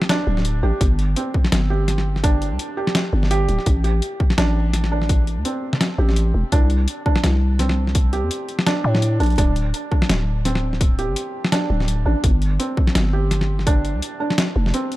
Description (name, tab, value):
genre	half-time drum and bass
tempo	168 BPM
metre	4/4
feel	swing 57% on 16ths, half-time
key	unclear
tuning	A4 = 440 Hz
part	felt-muted upright piano	arpeggios	0.0-15.0 s	C4 to G4	-25 LUFS	right 2 dB	digital delay
part	boom bap sampler-style drum kit	drums	0.0-15.0 s	hi-hat, snare drum	-22 LUFS	left 1 dB	none
part	growling 808-style bass	bass	0.3-14.7 s	D1 to A2	-19 LUFS	equal	none
part	electronic kick drum	drums	0.8-13.7 s	none	-18 LUFS	equal	none
room	little or no reverb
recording	dark, warm production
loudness	-17 LUFS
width	side -17 dB against mid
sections	0.0-15.0 A section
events	kick drops out 8.7-9.4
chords	0.0 D5; 0.8 G5; 3.7 Am7; 6.5 C5; 9.4 D5; 12.2 G5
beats	0.09 0.45 | 0.81 1.17 1.52 1.88 | 2.24 2.59 2.95 3.31 | 3.67 4.02 4.38 4.74 | 5.09 5.45 5.81 6.17 | 6.52 6.88 7.24 7.59 | 7.95 8.31 8.66 9.02 | 9.38 9.74 10.09 10.45 | 10.81 11.16 11.52 11.88 | 12.24 12.59 12.95 13.31 | 13.66 14.02 14.38 14.74